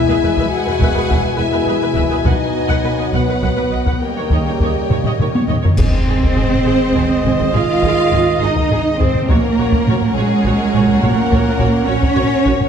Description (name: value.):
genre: cinematic, epic orchestral film score.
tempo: 69 BPM (dotted quarters).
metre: 12/8.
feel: straight.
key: E major.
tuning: A4 = 440 Hz.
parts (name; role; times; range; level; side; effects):
rich symphonic violin section; melody; 0.0-12.7 s; Ab4 to G#5; -25 LUFS; left 5 dB; none.
rich symphonic violin section; second line; 0.0-12.7 s; Ab4 to F#5; -27 LUFS; left 2 dB; none.
dark trombone section; sustained chords; 0.0-12.7 s; Bb2 to Db4; -24 LUFS; right 4 dB; none.
mellow French horn section; sustained chords; 0.0-12.7 s; A#3 to Eb5; -24 LUFS; left 6 dB; none.
warm symphonic string section; sustained chords; 0.0-12.7 s; G#3 to F#5; -27 LUFS; left 2 dB; none.
rich symphonic viola section; accompaniment; 0.1-12.5 s; Gb4 to F#5; -26 LUFS; right 1 dB; none.
dark symphonic cello section; bass; 0.1-12.7 s; E2 to F4; -19 LUFS; right 2 dB; none.
rich studio double bass section; bass; 0.2-12.5 s; E1 to D#2; -22 LUFS; right 3 dB; none.
taiko ensemble; drums; 0.4-12.7 s; none; -19 LUFS; equal; none.
dark trumpet section; stabs; 5.8-12.7 s; Eb5 to Gb5; -24 LUFS; right 5 dB; none.
clash cymbals and concert bass drum; percussion; 5.8-6.9 s; none; -20 LUFS; equal; none.
room: moderate scoring stage reverb, RT60 1.9 s.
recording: dark, warm production.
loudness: -13 LUFS.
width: side -8 dB against mid.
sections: 0.0-5.8 A section; 5.8-12.7 B section.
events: drum fill 4.9-5.8; band accent 5.8-6.4.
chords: 0.0 E; 2.3 B; 4.0 D#7; 5.8 Ab; 9.3 Gb/Bb.